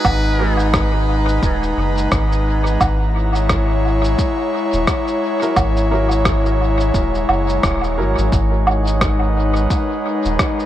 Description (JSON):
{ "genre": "ambient dub", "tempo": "87 BPM", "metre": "4/4", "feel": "swing 59% on 16ths", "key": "G# minor", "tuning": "A4 = 440 Hz", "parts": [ { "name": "trumpet with metal mute", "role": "melody", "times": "0.0-0.7 s", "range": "B4", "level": "-29 LUFS", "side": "equal", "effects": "vintage 12-bit sampler grit, dub echo" }, { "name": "airy breathy pad", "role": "sustained chords", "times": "0.0-10.7 s", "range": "G#3 to A#5", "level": "-19 LUFS", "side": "left 1 dB", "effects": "chorus" }, { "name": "soft dub sub bass", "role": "bass", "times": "0.0-10.4 s", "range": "D#1 to G#1", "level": "-18 LUFS", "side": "equal", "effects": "tube saturation" }, { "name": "electronic cabasa, woodblock and rim click", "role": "drums", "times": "0.0-10.7 s", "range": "none", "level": "-22 LUFS", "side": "right 1 dB", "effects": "dub echo" }, { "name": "electronic kick drum", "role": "drums", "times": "0.0-10.6 s", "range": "none", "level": "-21 LUFS", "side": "equal", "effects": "overdrive" }, { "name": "warm upright piano", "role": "stabs", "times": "0.4-0.6, 5.4-8.2 s", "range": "F#3 to B4", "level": "-29 LUFS", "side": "right 2 dB", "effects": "dub echo" } ], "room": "light reverb", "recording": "none", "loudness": "-15 LUFS", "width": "side -12 dB against mid", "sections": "0.0-8.3 A section; 8.3-10.7 A section", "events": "band accent 7.6-8.0", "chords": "0.0 G#m7; 2.8 F#7; 8.3 G#m7" }